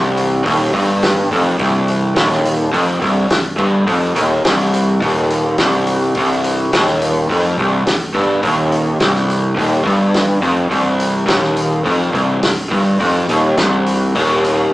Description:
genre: blues rock power trio and southern rock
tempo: 105 BPM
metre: 4/4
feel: straight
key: C minor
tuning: A4 = 440 Hz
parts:
  - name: crunchy overdriven guitar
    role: riff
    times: 0.0-14.7 s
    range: C2 to G2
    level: -14 LUFS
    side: equal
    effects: none
  - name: overdriven fingered electric bass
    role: bass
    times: 0.0-14.7 s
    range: C1 to G1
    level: -24 LUFS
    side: equal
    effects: none
  - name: vintage drum kit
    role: drums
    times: 0.2-14.6 s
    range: hi-hat, kick drum, snare drum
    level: -20 LUFS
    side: equal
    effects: none
room: wet studio reverb, RT60 0.6 s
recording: rough rehearsal-room recording, warm saturation, small speaker sound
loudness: -13 LUFS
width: side -17 dB against mid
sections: 0.0-14.7 A section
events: none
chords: 0.0 Cm

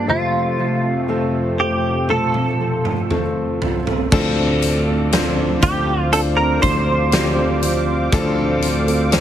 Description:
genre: pop ballad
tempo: 60 BPM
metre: 4/4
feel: straight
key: unclear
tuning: A4 = 440 Hz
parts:
  - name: direct-recorded clean electric guitar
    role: melody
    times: 0.0-7.6 s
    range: F4 to C5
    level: -21 LUFS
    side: right 2 dB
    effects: ensemble chorus
  - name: clear concert grand piano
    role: accompaniment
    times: 0.0-9.2 s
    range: F2 to C5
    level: -22 LUFS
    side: left 3 dB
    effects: none
  - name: warm analog pad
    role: sustained chords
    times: 0.0-9.2 s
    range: F2 to D6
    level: -26 LUFS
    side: equal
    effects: chorus
  - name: fingerpicked steel-string acoustic guitar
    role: arpeggios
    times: 0.0-9.2 s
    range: D3 to A4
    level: -25 LUFS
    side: right 5 dB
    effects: ping-pong delay
  - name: huge arena drum kit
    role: drums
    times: 2.1-9.2 s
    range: crash cymbal, hi-hat, kick drum, snare drum, toms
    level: -22 LUFS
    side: equal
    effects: none
  - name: sustaining fretless electric bass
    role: bass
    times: 4.1-9.2 s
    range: D2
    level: -20 LUFS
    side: equal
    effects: none
room: light reverb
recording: heavily compressed radio sound, lossy compression artefacts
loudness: -16 LUFS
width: side -10 dB against mid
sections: 0.0-4.1 A section; 4.1-9.2 B section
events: drum fill 2.1-4.1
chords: 0.1 F; 4.1 Dm7

